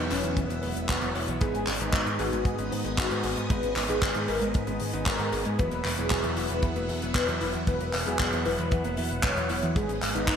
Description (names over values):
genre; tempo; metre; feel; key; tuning
italo disco; 115 BPM; 4/4; straight; G# minor; A4 = 440 Hz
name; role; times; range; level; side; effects
phased string machine; sustained chords; 0.0-10.4 s; B3 to F#6; -37 LUFS; equal; ensemble chorus, phaser
wide unison pluck; arpeggios; 0.0-10.4 s; B2 to G#4; -35 LUFS; right 3 dB; digital delay
bright electric grand piano; stabs; 0.0-10.4 s; F#3 to C#5; -34 LUFS; left 3 dB; none
picked electric bass with an envelope filter; bass; 0.0-10.4 s; E1 to G#2; -33 LUFS; equal; tube saturation
mellow synth brass; melody; 0.1-10.4 s; B3 to C#5; -32 LUFS; left 1 dB; chorus, digital delay
damped 70s drum kit; drums; 0.1-10.4 s; handclaps, hi-hat; -31 LUFS; left 1 dB; small room reverb, gated reverb
kick drum; drums; 0.4-10.4 s; none; -27 LUFS; equal; small room reverb
room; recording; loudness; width
wet lush hall reverb, RT60 1.6 s, small room ambience; bright 1980s-style digital production; -25 LUFS; side -8 dB against mid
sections
0.0-10.4 A section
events
none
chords
0.0 Esus2; 1.4 G#m; 5.6 Esus2; 9.8 G#m